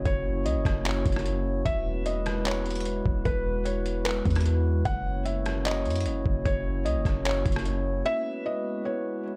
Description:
hip hop, atmospheric cloud-rap; 150 BPM; 4/4; half-time; E lydian; A4 = 438 Hz
glass harmonica; sustained chords; 0.0-9.4 s; G#3 to C#5; -34 LUFS; equal; sidechain pumping
warm 808-style bass; bass; 0.0-8.0 s; E1 to F#2; -31 LUFS; equal
felt-muted upright piano; melody; 0.1-9.2 s; B4 to F#5; -35 LUFS; equal; tape echo
trip hop sampler-style drum kit; drums; 0.1-7.7 s; handclaps, hi-hat, kick drum, rim click; -33 LUFS; equal; overdrive
digital ambience; -27 LUFS; mono
0.0-8.1 A section; 8.1-9.4 A section
0.0 F#7; 1.7 Eadd9; 4.9 F#7; 8.1 Eadd9

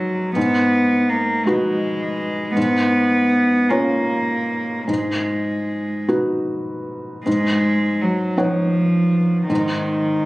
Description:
neoclassical piano and strings; 49-55 BPM (dotted quarters); 6/8; rubato; G# dorian; A4 = 440 Hz
warm cello; second line; 0.0-10.3 s; D#3 to B3; -19 LUFS; right 1 dB
felt-muted upright piano; accompaniment; 0.0-10.3 s; G#2 to F#5; -21 LUFS; left 1 dB
moderate large studio reverb, RT60 1.4 s; recorded on a phone in the room, club reverb; -17 LUFS; side -20 dB against mid
0.0-7.3 A section; 7.3-10.3 A section
0.4 G#m7; 2.6 C#7/G#; 4.9 G#m7; 7.3 D#m7/G#; 9.5 G#5

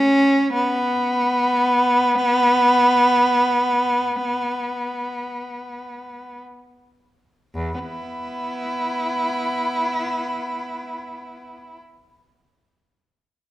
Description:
classical, free, expressive piece for unaccompanied cello; free time; A4 = 440 Hz
rich cello; solo; 0.0-11.7 s; E2 to E4; -18 LUFS; equal
moderate recital hall reverb, RT60 1.5 s; -18 LUFS; side -15 dB against mid
0.0-7.6 A section; 7.6-13.5 B section
slowing down 0.0-7.6

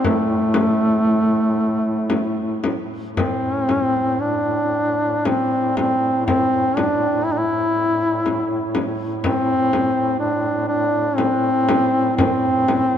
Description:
caucasian folk, Caucasian lament; 54-62 BPM; 3/4; rubato; A minor; A4 = 440 Hz
warm duduk; melody; 0.0-13.0 s; A3 to E4; -18 LUFS; left 1 dB
warm duduk; drone; 0.0-13.0 s; A2; -26 LUFS; right 2 dB
frame drum; percussion; 0.0-12.9 s; -25 LUFS; left 2 dB
moderate cathedral reverb, RT60 5.4 s; minimal, uncompressed stereo recording; -17 LUFS; side -9 dB against mid
0.0-3.2 A section; 3.2-13.0 B section

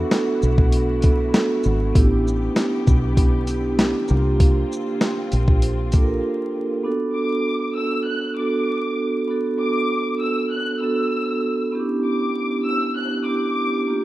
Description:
hip hop, boom-bap hip-hop; 98 BPM; 4/4; swing 56% on 16ths; E minor; A4 = 440 Hz
vibraphone with soft mallets; accompaniment; 0.0-14.0 s; Bb3 to Bb4; -22 LUFS; right 2 dB; cassette tape, high-pass filter, low-pass filter
rich studio string section; sustained chords; 0.0-6.8 s; D3 to G4; -34 LUFS; left 3 dB; high-pass filter, low-pass filter
deep dub fingered electric bass; bass; 0.0-6.2 s; G#1 to C2; -21 LUFS; equal
boom bap sampler-style drum kit; drums; 0.1-6.1 s; hi-hat, kick drum, shaker, snare drum; -18 LUFS; equal
dark studio violin section; melody; 7.2-14.0 s; D6 to F#6; -27 LUFS; left 2 dB; high-pass filter, low-pass filter, digital delay
little or no reverb; rough home demo mix, vinyl crackle; -18 LUFS; side -16 dB against mid
0.0-6.8 A section; 6.8-14.0 B section
break 6.2-6.8
0.0 E9sus4; 2.0 A9sus4; 4.1 C9sus4; 6.8 E9sus4; 11.7 Em7/B

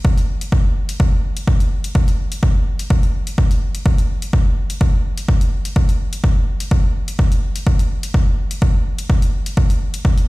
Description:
house; 126 BPM; 4/4; swing 54% on 16ths
electronic kick drum; drums; 0.0-10.1 s; -15 LUFS; equal; overdrive
electronic hi-hat; drums; 0.2-10.3 s; -32 LUFS; left 3 dB; overdrive
little or no reverb; played on a big sound system in a bare room, stone room reverb; -15 LUFS; side -20 dB against mid
0.0-10.3 A section

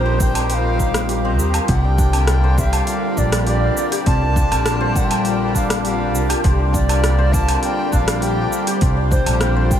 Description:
organic downtempo; 101 BPM; 4/4; straight; A4 = 439 Hz
bright reedy bass bansuri; melody; 0.0-9.8 s; C5 to A5; -24 LUFS; right 1 dB; diffuse ambient delay
hand-pumped harmonium; accompaniment; 0.0-9.8 s; D3 to Bb4; -26 LUFS; left 3 dB; sidechain pumping, ping-pong delay
ethereal airy pad; sustained chords; 0.0-9.8 s; G3 to Eb6; -25 LUFS; equal; ensemble chorus, built-in reverb, sidechain pumping
santur; arpeggios; 0.0-9.8 s; C4 to C5; -26 LUFS; left 2 dB; ping-pong delay
upright bass; bass; 0.0-9.8 s; Bb1 to Eb2; -19 LUFS; equal; sidechain pumping
deep house drum kit; drums; 0.2-9.8 s; cabasa, hi-hat, rim click, woodblock; -25 LUFS; equal; overdrive
electronic kick drum; drums; 0.2-9.8 s; -20 LUFS; equal; overdrive
moderate huge ambient reverb, RT60 7.2 s; dreamy mix soaked in reverb; -15 LUFS; side -10 dB against mid
0.0-9.8 A section
0.0 Cm

